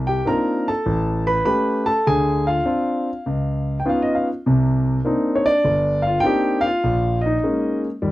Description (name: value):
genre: solo jazz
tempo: 100 BPM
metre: 4/4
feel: swing 68% on 8ths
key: C minor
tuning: A4 = 440 Hz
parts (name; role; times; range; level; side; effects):
- warm concert grand piano; solo; 0.0-8.1 s; G1 to B5; -18 LUFS; equal; none
room: little or no reverb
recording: dry, close 1970s-style studio recording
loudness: -18 LUFS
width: side -16 dB against mid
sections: 0.0-8.1 A section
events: none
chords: 0.0 Cm11; 0.9 A7; 2.1 Dm7b5; 3.3 Db9; 4.4 Cm9; 6.8 Bbm7